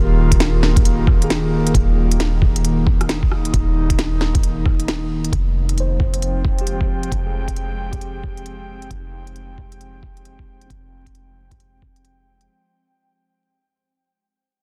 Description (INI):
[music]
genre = future garage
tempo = 134 BPM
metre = 4/4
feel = swing 62% on 16ths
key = F minor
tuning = A4 = 442 Hz
[part]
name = mellow tine electric piano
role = accompaniment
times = 0.0-12.5 s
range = C4 to C5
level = -34 LUFS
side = equal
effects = sidechain pumping, dub echo
[part]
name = airy breathy pad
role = sustained chords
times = 0.0-12.5 s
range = Eb3 to G5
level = -26 LUFS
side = equal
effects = chorus, vintage 12-bit sampler grit, sidechain pumping
[part]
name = soft 808-style bass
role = bass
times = 0.0-12.5 s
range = Eb1 to F1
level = -23 LUFS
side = equal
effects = sidechain pumping
[part]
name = electronic kick drum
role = drums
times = 0.3-11.9 s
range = none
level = -20 LUFS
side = equal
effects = none
[part]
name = organic electronic drum kit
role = drums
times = 0.3-12.5 s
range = hi-hat, rim click, snare drum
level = -26 LUFS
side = equal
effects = overdrive
[sound]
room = little or no reverb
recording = dense, heavily limited modern master, vinyl crackle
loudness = -18 LUFS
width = mono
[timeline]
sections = 0.0-12.5 A section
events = fade-out 0.0-12.5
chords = 0.0 Ebsus4; 5.3 Fm7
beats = 0.40 0.85 1.29 | 1.74 2.19 2.64 3.09 | 3.53 3.98 4.43 4.88 | 5.33 5.77 6.22 6.67 | 7.12 7.56 8.01 8.46 | 8.91 9.36 9.80 10.25 | 10.70 11.15 11.59 12.04